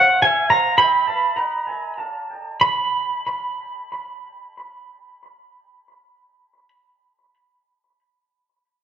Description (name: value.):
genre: rock.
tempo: free time.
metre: none.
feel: none.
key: unclear.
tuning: A4 = 440 Hz.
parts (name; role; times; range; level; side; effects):
twelve-string electric guitar; melody; 0.0-6.7 s; F#5 to B5; -17 LUFS; right 1 dB; analog delay.
room: wet scoring stage reverb, RT60 1.4 s.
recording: none.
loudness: -18 LUFS.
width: side -9 dB against mid.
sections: 0.0-2.6 A section; 2.6-6.5 B section.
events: slowing down 0.0-2.6.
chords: none.